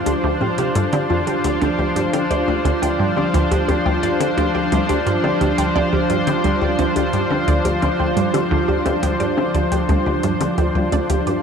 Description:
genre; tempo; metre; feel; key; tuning
ambient, sequencer-driven space music; 87 BPM; 4/4; straight; unclear; A4 = 440 Hz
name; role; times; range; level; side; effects
lush unison pad; sustained chords; 0.0-11.4 s; F3 to C5; -20 LUFS; equal; chorus, shimmer reverb
bubbling stepped-filter texture; texture; 0.0-11.4 s; F4 to F5; -29 LUFS; equal; chorus, built-in reverb, shimmer reverb
wide unison pluck; arpeggios; 0.1-11.4 s; G3 to G5; -25 LUFS; moving between left 2 dB and right 6 dB; auto-pan, tape echo, shimmer reverb
resonant blip pluck; riff; 0.1-11.4 s; D2 to D3; -21 LUFS; equal; chorus, phaser, tape echo
electronic hi-hat and bongos; percussion; 0.1-11.4 s; none; -32 LUFS; left 1 dB; tape echo
room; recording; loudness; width
wet huge ambient reverb, RT60 8.0 s; none; -16 LUFS; side -6 dB against mid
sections
0.0-11.4 A section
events
none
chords
0.0 Dm7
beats
0.06 0.75 | 1.44 2.13 2.82 3.51 | 4.20 4.89 5.58 6.27 | 6.96 7.65 8.34 9.03 | 9.72 10.41 11.10

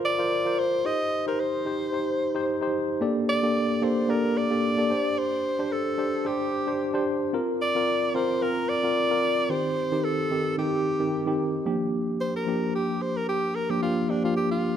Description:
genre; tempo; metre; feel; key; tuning
pop; 111 BPM; 4/4; swing 55% on 16ths; G minor; A4 = 440 Hz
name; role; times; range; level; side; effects
bright alto saxophone; melody; 0.0-14.8 s; D4 to Eb5; -27 LUFS; equal; digital delay
mellow tine electric piano; accompaniment; 0.0-14.8 s; Eb3 to D5; -25 LUFS; equal; medium stereo tremolo
room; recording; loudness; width
moderate concert hall reverb, RT60 2.2 s; dark, warm production; -23 LUFS; side -9 dB against mid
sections
0.0-11.7 A section; 11.7-14.8 B section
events
alto saxophone solo 11.7-14.8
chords
0.0 Fsus4; 0.9 Cm/Eb; 3.0 Gmadd9; 4.9 Csus2; 7.3 Fsus4; 9.5 Cm/Eb; 11.7 Gm7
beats
0.31 | 0.85 1.39 1.93 2.47 | 3.01 3.55 4.09 4.63 | 5.18 5.72 6.26 6.80 | 7.34 7.88 8.42 8.96 | 9.50 10.04 10.58 11.12 | 11.66 12.20 12.74 13.28 | 13.82 14.37

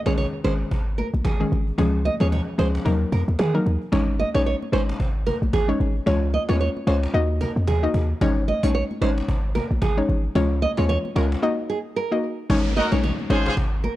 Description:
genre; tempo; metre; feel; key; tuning
afrobeats; 112 BPM; 4/4; swing 58% on 16ths; unclear; A4 = 439 Hz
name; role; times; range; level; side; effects
soft round pluck; accompaniment; 0.1-13.6 s; Eb3 to Eb5; -24 LUFS; left 2 dB; chorus
nylon-string guitar; riff; 0.1-13.9 s; Ab4 to Eb5; -27 LUFS; right 5 dB; tape echo
warm 808-style bass; bass; 0.1-13.9 s; Ab1 to Eb3; -22 LUFS; equal; none
cajon; drums; 0.1-13.9 s; none; -34 LUFS; equal; none
congas; percussion; 0.1-14.0 s; none; -32 LUFS; left 2 dB; none
downlifter; sound effects; 12.5-14.0 s; none; -33 LUFS; equal; none
clear horn section; second line; 12.8-13.5 s; Eb4 to C5; -27 LUFS; left 1 dB; none
room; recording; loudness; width
small room ambience; none; -20 LUFS; side -15 dB against mid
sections
0.0-3.9 A section; 3.9-12.5 B section; 12.5-14.0 C section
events
break 11.4-12.5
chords
0.0 Absus4; 1.8 Db; 2.9 Ebm; 3.9 Absus4; 6.1 Db; 7.1 Ebm; 8.2 Absus4; 10.4 Db; 11.4 Ebm; 12.5 Absus4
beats
0.18 0.71 1.25 | 1.78 2.32 2.85 3.39 | 3.93 4.46 5.00 5.53 | 6.07 6.61 7.14 7.68 | 8.21 8.75 9.28 9.82 | 10.36 10.89 11.43 11.96 | 12.50 13.03 13.57

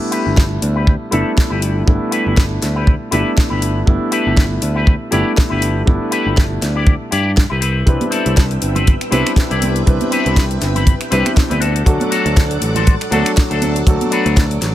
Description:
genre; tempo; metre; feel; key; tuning
nu-disco, nu disco; 120 BPM; 4/4; swing 56% on 16ths; G major; A4 = 441 Hz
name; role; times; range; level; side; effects
warm grand piano; accompaniment; 0.0-14.7 s; F#3 to B4; -20 LUFS; equal; sidechain pumping, ping-pong delay
electric guitar with an envelope filter; riff; 0.1-14.4 s; C4 to D5; -22 LUFS; left 4 dB; analog chorus, low-pass filter, ping-pong delay
house drum kit; drums; 0.1-14.7 s; finger snaps, hi-hat, snare drum; -24 LUFS; left 2 dB; overdrive
picked electric bass; bass; 0.3-14.7 s; G1 to G2; -18 LUFS; equal; none
kick drum; drums; 0.4-14.5 s; none; -12 LUFS; equal; none
string machine, full ensemble; sustained chords; 7.9-14.7 s; A4 to D6; -26 LUFS; right 1 dB; ensemble chorus, sidechain pumping
congas; percussion; 8.0-14.1 s; none; -26 LUFS; right 3 dB; none
room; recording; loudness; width
small room reverb; none; -13 LUFS; side -13 dB against mid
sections
0.0-14.7 A section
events
none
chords
0.0 G6; 11.6 D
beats
0.37 0.87 1.37 | 1.87 2.37 2.87 3.37 | 3.87 4.37 4.87 5.37 | 5.87 6.37 6.87 7.37 | 7.87 8.37 8.87 9.37 | 9.87 10.37 10.87 11.37 | 11.87 12.37 12.87 13.37 | 13.87 14.37

